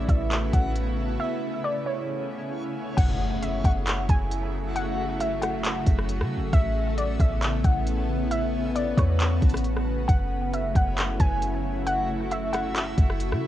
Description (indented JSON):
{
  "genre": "hip hop, atmospheric cloud-rap",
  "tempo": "135 BPM",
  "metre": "4/4",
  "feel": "half-time",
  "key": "unclear",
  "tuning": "A4 = 440 Hz",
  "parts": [
    { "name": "warbly dusty pluck", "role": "melody", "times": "0.0-13.2 s", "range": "C#5 to G#5", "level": "-31 LUFS", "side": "equal", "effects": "chorus, low-pass filter, cassette tape, analog delay" },
    { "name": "shimmering ambient pad", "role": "sustained chords", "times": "0.0-13.5 s", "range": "C#3 to F#4", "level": "-30 LUFS", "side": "left 1 dB", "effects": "chorus, built-in reverb, sidechain pumping, cassette tape" },
    { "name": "clean 808-style bass", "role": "bass", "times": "0.0-13.5 s", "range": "F#1 to C#3", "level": "-28 LUFS", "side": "equal", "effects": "none" },
    { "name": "backwards swelling texture", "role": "texture", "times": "0.0-13.5 s", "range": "A3 to E5", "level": "-39 LUFS", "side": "equal", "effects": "built-in reverb, cassette tape" },
    { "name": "smooth R&B drum kit", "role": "drums", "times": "0.1-13.4 s", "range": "crash cymbal, handclaps, hi-hat, kick drum, rim click", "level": "-24 LUFS", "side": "equal", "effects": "cassette tape" },
    { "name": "impact", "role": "sound effects", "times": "3.0-4.8 s", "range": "none", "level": "-37 LUFS", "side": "equal", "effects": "none" }
  ],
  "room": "little or no reverb",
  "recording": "home recording on cassette",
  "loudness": "-23 LUFS",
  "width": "side -13 dB against mid",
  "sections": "0.0-3.0 A section; 3.0-13.5 B section",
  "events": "break 1.2-3.0; impact 3.0-4.8",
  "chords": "0.0 Aadd9; 3.0 F#m7; 6.5 Aadd9; 10.1 F#m7",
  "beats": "0.31 0.76 | 1.20 1.64 2.09 2.53 | 2.98 3.42 3.87 4.31 | 4.75 5.20 5.64 6.09 | 6.53 6.98 7.42 7.87 | 8.31 8.76 9.20 9.64 | 10.09 10.53 10.98 11.42 | 11.87 12.31 12.76 13.20"
}